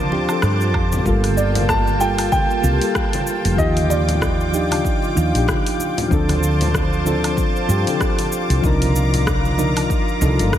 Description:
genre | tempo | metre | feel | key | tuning
sunset chillout | 95 BPM | 4/4 | swing 57% on 16ths | G minor | A4 = 443 Hz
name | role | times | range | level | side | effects
warm concert grand piano | melody | 0.0-5.1 s | D5 to A5 | -24 LUFS | right 1 dB | tape echo, shimmer reverb
soft electric-piano-like synth keys | accompaniment | 0.0-10.6 s | F3 to A5 | -22 LUFS | equal | chorus, auto-pan, tape echo, shimmer reverb
lush unison pad | sustained chords | 0.0-10.6 s | Bb3 to D6 | -24 LUFS | equal | chorus, shimmer reverb
woody fretless electric bass | bass | 0.0-10.5 s | F1 to G2 | -19 LUFS | equal | none
congas | percussion | 0.1-10.6 s | none | -28 LUFS | left 3 dB | none
deep house drum kit | drums | 0.3-10.6 s | cabasa, hi-hat, rim click, woodblock | -27 LUFS | equal | none
electronic kick drum | drums | 0.7-10.6 s | none | -23 LUFS | equal | none
room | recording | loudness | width
light reverb, digital ambience | none | -16 LUFS | side -11 dB against mid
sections
0.0-1.1 A section; 1.1-10.6 B section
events
none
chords
0.0 Dm7; 1.1 Gm9; 3.6 Ebmaj9; 6.1 Dm7; 8.6 Cm11

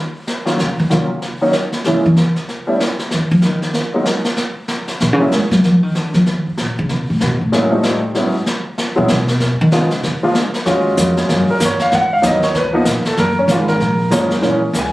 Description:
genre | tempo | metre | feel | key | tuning
jazz piano trio | 191 BPM | 4/4 | swing 61% on 8ths | Eb minor | A4 = 442 Hz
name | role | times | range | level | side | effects
vintage brush drum kit | drums | 0.3-14.9 s | brushed snare drum, hi-hat, snare drum | -20 LUFS | equal | none
warm concert grand piano | melody | 0.5-5.3, 7.5-14.9 s | Eb3 to Ab5 | -16 LUFS | equal | none
upright bass | bass | 0.6-14.9 s | Gb1 to Ab3 | -16 LUFS | equal | none
room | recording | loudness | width
light reverb | recorded on a phone in the room, club reverb, compression | -13 LUFS | side -18 dB against mid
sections
0.6-10.7 A section; 10.7-14.9 A section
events
upright bass solo 0.0-10.7; grand piano solo 10.7-14.9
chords
0.0 N.C.; 0.6 Ebm7; 1.9 Bbm7b5; 2.5 N.C.; 4.4 Gb7; 5.6 Gbmaj7#5; 6.9 Asus2; 7.5 F9; 8.2 E69; 9.4 Fm7b5; 10.0 Bb (rootless); 10.7 Ebm11; 11.9 Abm9; 12.5 Db7(no3); 13.2 Gbmaj7

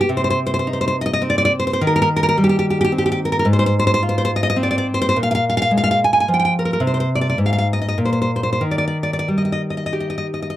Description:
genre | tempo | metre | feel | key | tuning
romantic piece for solo classical guitar | 89-112 BPM | 3/4 | rubato | C minor, Eb major from 3.5 s | A4 = 438 Hz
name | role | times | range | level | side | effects
nylon-string guitar | solo | 0.0-10.6 s | Ab2 to Ab5 | -16 LUFS | equal | none
room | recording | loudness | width
little or no reverb | dry, close 1970s-style studio recording | -16 LUFS | side -13 dB against mid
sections
0.0-10.6 A section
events
none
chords
0.1 Cm; 1.8 Cm/Eb; 3.5 Fm/Ab; 5.2 Bb5; 6.8 N.C.; 8.6 Eb

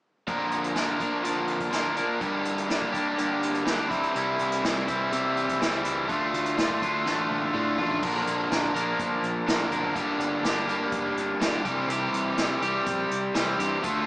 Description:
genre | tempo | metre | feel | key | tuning
indie rock | 124 BPM | 4/4 | straight | unclear | A4 = 440 Hz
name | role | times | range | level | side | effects
crunchy overdriven guitar | riff | 0.3-14.1 s | G2 to Bb4 | -25 LUFS | equal | none
unplugged drum kit | drums | 0.3-14.0 s | crash cymbal, hi-hat, kick drum, snare drum, toms | -31 LUFS | equal | none
growling picked electric bass | bass | 4.2-14.0 s | F1 to C3 | -36 LUFS | equal | overdrive
room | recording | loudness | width
moderate large studio reverb, RT60 1.4 s | band playing live in one room, small speaker sound | -24 LUFS | side -22 dB against mid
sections
0.3-8.0 A section; 8.0-14.1 B section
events
drum fill 7.1-8.0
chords
0.3 Bb; 2.2 Gm; 3.9 C; 6.1 Dm; 8.0 Bb; 10.0 Gm; 11.7 C

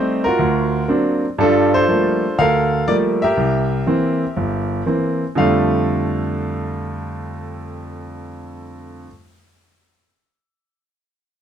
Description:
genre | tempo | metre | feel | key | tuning
solo jazz | 121 BPM | 4/4 | swing 68% on 8ths | F major | A4 = 440 Hz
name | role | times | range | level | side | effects
bright grand piano | solo | 0.0-9.1 s | G1 to F5 | -17 LUFS | right 1 dB | none
room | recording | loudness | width
light reverb | dark, warm production | -16 LUFS | side -9 dB against mid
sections
0.0-1.4 A section; 1.4-5.4 B section; 5.4-9.3 C section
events
none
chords
0.4 D7alt; 1.4 Gm9; 3.4 C7; 5.4 F69

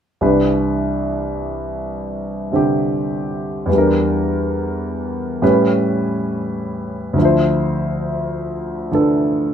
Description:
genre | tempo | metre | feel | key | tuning
jazz | 69 BPM | 4/4 | swing 67% on 8ths | C major | A4 = 440 Hz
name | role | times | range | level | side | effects
warm concert grand piano | accompaniment | 0.2-9.5 s | C2 to C5 | -16 LUFS | equal | none
room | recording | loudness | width
moderate studio reverb, RT60 0.5 s | minimal, uncompressed stereo recording | -16 LUFS | side -8 dB against mid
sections
0.2-9.5 A section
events
none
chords
0.2 Cmaj7; 3.7 Em7b5; 5.4 A7; 7.2 Dm9

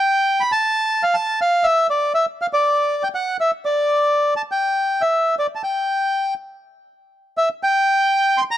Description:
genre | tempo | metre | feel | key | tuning
tango | 120 BPM | 4/4 | rubato | unclear | A4 = 440 Hz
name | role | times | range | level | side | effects
bandoneon | solo | 0.0-8.6 s | D5 to C6 | -16 LUFS | equal | none
room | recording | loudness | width
studio reverb | dry, close 1970s-style studio recording | -17 LUFS | side -12 dB against mid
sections
0.0-8.6 A section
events
none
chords
none

